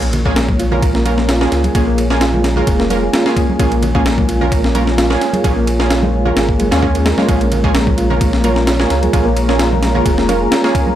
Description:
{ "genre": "breakbeat, breaks", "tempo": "130 BPM", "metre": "4/4", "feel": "swing 53% on 16ths", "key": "Bb minor", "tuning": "A4 = 440 Hz", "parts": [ { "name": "dark analog pad", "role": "sustained chords", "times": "0.1-11.0 s", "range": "F4 to Bb5", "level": "-23 LUFS", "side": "right 1 dB", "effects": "chorus, vintage 12-bit sampler grit, sidechain pumping" }, { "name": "mellow reed electric piano", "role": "riff", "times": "0.0-11.0 s", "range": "Ab3 to Ab4", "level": "-18 LUFS", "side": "equal", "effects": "fast tremolo, analog delay" }, { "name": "orchestra-hit-like synth stab", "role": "stabs", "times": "0.0-10.8 s", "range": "Bb3 to Bb4", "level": "-20 LUFS", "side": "right 2 dB", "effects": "built-in reverb, analog delay" }, { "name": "saturated sub bass", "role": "bass", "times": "0.0-10.5 s", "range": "F1 to Eb2", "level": "-18 LUFS", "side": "left 1 dB", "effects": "none" }, { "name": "breakbeat sampler-style drum kit", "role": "drums", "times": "0.0-10.9 s", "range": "kick drum, ride cymbal, snare drum", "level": "-17 LUFS", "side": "left 1 dB", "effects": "studio reverb" }, { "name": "congas", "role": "percussion", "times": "0.1-11.0 s", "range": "none", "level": "-25 LUFS", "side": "right 2 dB", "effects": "none" } ], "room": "little or no reverb", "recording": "dry, gritty hardware recording", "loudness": "-12 LUFS", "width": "side -11 dB against mid", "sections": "0.0-11.0 A section", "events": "none", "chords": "0.0 Bbm7", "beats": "0.36 0.83 1.29 | 1.75 2.21 2.67 3.13 | 3.60 4.06 4.52 4.98 | 5.44 5.90 6.37 6.83 | 7.29 7.75 8.21 8.67 | 9.13 9.60 10.06 10.52" }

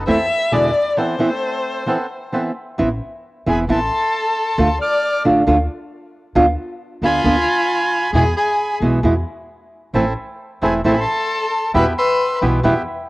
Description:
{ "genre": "tango", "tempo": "134 BPM", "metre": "4/4", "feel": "rubato", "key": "A harmonic minor", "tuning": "A4 = 443 Hz", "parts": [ { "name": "bandoneon", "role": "stabs", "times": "0.0-2.5, 9.9-12.8 s", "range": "A3 to A4", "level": "-23 LUFS", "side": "right 1 dB", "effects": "cassette tape" }, { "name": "upright bass", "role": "bass", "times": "0.0-12.8 s", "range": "E1 to E2", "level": "-22 LUFS", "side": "equal", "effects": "none" }, { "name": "warm violin", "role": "second line", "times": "0.1-12.4 s", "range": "F4 to E5", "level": "-20 LUFS", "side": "left 2 dB", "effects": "cassette tape" }, { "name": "nylon-string guitar", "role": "accompaniment", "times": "0.1-12.7 s", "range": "B2 to F4", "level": "-18 LUFS", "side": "right 1 dB", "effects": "cassette tape" }, { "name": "bandoneon", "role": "melody", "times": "3.5-12.4 s", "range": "G#5 to F6", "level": "-21 LUFS", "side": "right 1 dB", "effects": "cassette tape" } ], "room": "moderate spring reverb, RT60 2.3 s", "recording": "home recording on cassette", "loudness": "-15 LUFS", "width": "side -19 dB against mid", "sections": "0.0-2.8 A section; 2.8-13.1 B section", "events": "violin solo 0.0-2.8; break 1.0-2.8", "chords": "0.1 Am/E; 0.5 E7; 1.0 Amadd9; 4.6 Dm; 6.4 Bdim/D; 8.1 E; 9.9 Am; 11.7 Em", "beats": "0.07 0.53 | 0.97 1.42 1.87 2.33 | 2.79 3.24 3.69 4.14 | 4.58 5.03 5.48 5.92 | 6.36 6.80 7.25 7.69 | 8.14 8.58 9.03 9.49 | 9.94 10.40 10.85 11.30 | 11.75 12.20 12.64" }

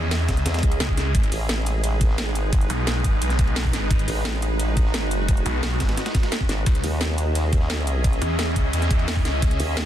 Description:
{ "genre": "dark technical drum and bass", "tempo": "174 BPM", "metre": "4/4", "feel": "straight", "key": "G# phrygian", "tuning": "A4 = 437 Hz", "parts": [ { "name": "swarming drone", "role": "sustained chords", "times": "0.0-9.9 s", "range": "G#3 to E5", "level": "-28 LUFS", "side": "equal", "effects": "built-in reverb, sidechain pumping" }, { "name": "snarling distorted saw bass", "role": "bass", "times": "0.0-9.6 s", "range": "G#1 to E2", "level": "-24 LUFS", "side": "equal", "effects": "distortion, tube saturation, sidechain pumping" }, { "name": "breakbeat sampler-style drum kit", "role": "drums", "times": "0.1-9.8 s", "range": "hi-hat, ride cymbal, snare drum", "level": "-36 LUFS", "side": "right 1 dB", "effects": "high-pass filter on cymbals, high-pass filter on hats, high-pass filter on snare" }, { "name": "drum and bass drum kit", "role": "drums", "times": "0.1-9.8 s", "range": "hi-hat, snare drum", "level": "-28 LUFS", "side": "equal", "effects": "soft clipping on snare" }, { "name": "electronic kick drum", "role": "drums", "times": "0.3-9.5 s", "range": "none", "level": "-21 LUFS", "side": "equal", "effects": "none" }, { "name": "formant-sweep wobble bass", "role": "bass", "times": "0.5-9.9 s", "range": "G#1 to E2", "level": "-24 LUFS", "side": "equal", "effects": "chorus" }, { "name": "swell", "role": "sound effects", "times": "0.6-1.1 s", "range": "none", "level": "-35 LUFS", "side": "right 1 dB", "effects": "none" } ], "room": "little or no reverb", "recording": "dense, heavily limited modern master", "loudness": "-20 LUFS", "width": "side -11 dB against mid", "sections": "0.0-9.9 A section", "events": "swell 0.6-1.1", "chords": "0.0 C#m; 1.1 G#m; 6.7 C#m", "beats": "0.11 0.46 0.80 | 1.15 1.49 1.84 2.18 | 2.53 2.87 3.22 3.56 | 3.91 4.25 4.60 4.94 | 5.29 5.63 5.97 6.32 | 6.67 7.01 7.35 7.70 | 8.04 8.39 8.73 9.08 | 9.42 9.77" }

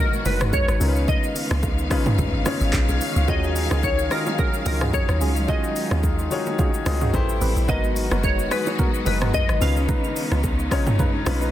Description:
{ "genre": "amapiano", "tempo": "109 BPM", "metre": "4/4", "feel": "swing 55% on 16ths", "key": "Eb minor", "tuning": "A4 = 440 Hz", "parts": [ { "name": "glassy wavetable pluck", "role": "melody", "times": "0.0-11.5 s", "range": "Bb4 to F5", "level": "-28 LUFS", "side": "left 1 dB", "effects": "chorus, digital delay" }, { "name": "clear grand piano", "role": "accompaniment", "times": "0.0-11.5 s", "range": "Db3 to Eb5", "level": "-27 LUFS", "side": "left 5 dB", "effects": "none" }, { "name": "warm studio string section", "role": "sustained chords", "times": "0.0-11.5 s", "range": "Bb2 to F5", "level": "-29 LUFS", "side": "equal", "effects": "none" }, { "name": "deep house drum kit", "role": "drums", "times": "0.1-11.5 s", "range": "handclaps, hi-hat, kick drum, rim click, shaker, toms", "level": "-24 LUFS", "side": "equal", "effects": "none" }, { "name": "deep log drum bass", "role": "bass", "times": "0.3-11.5 s", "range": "Gb1 to Eb2", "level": "-22 LUFS", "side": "equal", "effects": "none" }, { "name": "bongos and congas", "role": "percussion", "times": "0.3-11.4 s", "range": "none", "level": "-32 LUFS", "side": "right 4 dB", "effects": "none" }, { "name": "percussive organ stab", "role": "stabs", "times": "3.3-11.5 s", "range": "Cb4 to B4", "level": "-32 LUFS", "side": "right 3 dB", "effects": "chorus, digital delay" } ], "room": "digital ambience", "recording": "dense, heavily limited modern master", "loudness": "-19 LUFS", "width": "side -12 dB against mid", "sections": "0.0-11.5 A section", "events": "none", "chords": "0.0 Abm9; 0.8 Db9; 3.3 Ebm11; 7.1 Am9; 7.7 Abm9; 9.6 Db9", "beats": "0.53 | 1.08 1.63 2.18 2.73 | 3.28 3.83 4.38 4.93 | 5.49 6.04 6.59 7.14 | 7.69 8.24 8.79 9.34 | 9.89 10.44 10.99" }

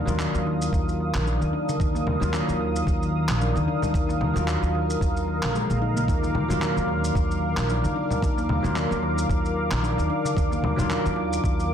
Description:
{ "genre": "organic downtempo", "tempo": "112 BPM", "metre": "4/4", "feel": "swing 56% on 16ths", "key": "Eb harmonic minor", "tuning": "A4 = 440 Hz", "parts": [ { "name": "bell-like tine electric piano", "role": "accompaniment", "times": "0.0-11.7 s", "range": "Eb3 to Bb4", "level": "-30 LUFS", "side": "left 2 dB", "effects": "wide subtle chorus, sidechain pumping, tape echo" }, { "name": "warm analog pad", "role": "sustained chords", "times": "0.0-11.7 s", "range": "Bb4 to Eb6", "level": "-29 LUFS", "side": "right 1 dB", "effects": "chorus, sidechain pumping" }, { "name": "upright bass", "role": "bass", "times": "0.0-11.7 s", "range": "Bb1 to Eb2", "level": "-27 LUFS", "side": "equal", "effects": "none" }, { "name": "electronic congas, shaker and handclaps", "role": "drums", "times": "0.1-11.7 s", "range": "none", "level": "-31 LUFS", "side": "left 1 dB", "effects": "soft clipping on snare" }, { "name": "darbuka", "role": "percussion", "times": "0.1-11.3 s", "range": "none", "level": "-36 LUFS", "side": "left 2 dB", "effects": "none" }, { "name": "handpan", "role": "arpeggios", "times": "0.2-11.7 s", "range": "Bb2 to Eb4", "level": "-29 LUFS", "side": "left 1 dB", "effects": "low-pass filter, tape echo" }, { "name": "electronic kick drum", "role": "drums", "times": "0.7-11.6 s", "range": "none", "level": "-26 LUFS", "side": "equal", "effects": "none" } ], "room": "moderate digital room reverb, RT60 1.1 s", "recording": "dense, heavily limited modern master", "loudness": "-22 LUFS", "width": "side -8 dB against mid", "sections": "0.0-11.7 A section", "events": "none", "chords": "0.0 Ebmadd9", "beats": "0.19 0.72 1.26 | 1.80 2.33 2.87 3.40 | 3.94 4.47 5.01 5.55 | 6.08 6.62 7.15 7.69 | 8.22 8.76 9.30 9.83 | 10.37 10.90 11.44" }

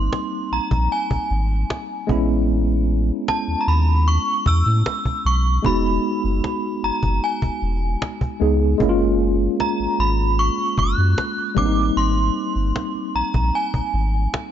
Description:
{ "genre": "contemporary R&B", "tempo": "76 BPM", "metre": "4/4", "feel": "straight", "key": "unclear", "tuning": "A4 = 442 Hz", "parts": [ { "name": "synth chime", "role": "melody", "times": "0.0-14.5 s", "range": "G#5 to F#6", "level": "-24 LUFS", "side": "right 1 dB", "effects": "ensemble chorus, tape echo" }, { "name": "tine electric piano", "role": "accompaniment", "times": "0.0-14.5 s", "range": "G3 to G#4", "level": "-23 LUFS", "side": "equal", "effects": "overdrive, fast stereo tremolo" }, { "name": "warm sub bass", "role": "bass", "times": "0.0-14.3 s", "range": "E1 to A2", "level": "-19 LUFS", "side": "equal", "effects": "none" }, { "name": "cajon", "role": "drums", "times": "0.1-14.5 s", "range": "none", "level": "-24 LUFS", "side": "equal", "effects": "none" } ], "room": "digital ambience", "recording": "nothing above 7.6 kHz", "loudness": "-18 LUFS", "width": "side -10 dB against mid", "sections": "0.0-14.5 A section", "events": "break 0.0-8.8", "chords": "0.0 G#maj9; 2.1 Amaj9; 5.6 Emaj9; 8.8 F#maj9; 11.6 G#maj9", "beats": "0.12 0.91 1.70 | 2.49 3.28 4.07 4.86 | 5.65 6.43 7.22 8.01 | 8.80 9.59 10.38 11.17 | 11.96 12.75 13.54 14.33" }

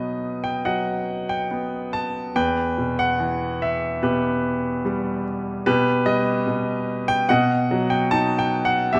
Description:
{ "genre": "classical, lyrical solo piano", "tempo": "73 BPM", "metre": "4/4", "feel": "rubato", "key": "unclear", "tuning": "A4 = 440 Hz", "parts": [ { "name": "bright grand piano", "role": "solo", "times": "0.0-9.0 s", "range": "E2 to A5", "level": "-23 LUFS", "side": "equal", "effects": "none" } ], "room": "moderate recital hall reverb, RT60 1.5 s", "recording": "none", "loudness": "-23 LUFS", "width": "mono", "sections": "0.0-9.0 A section", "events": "none", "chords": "0.0 B; 2.4 Em; 5.7 Baug; 7.3 B", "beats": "0.65 1.50 | 2.35 3.20 4.03 4.85 | 5.66 6.47 7.30 8.12 | 8.94" }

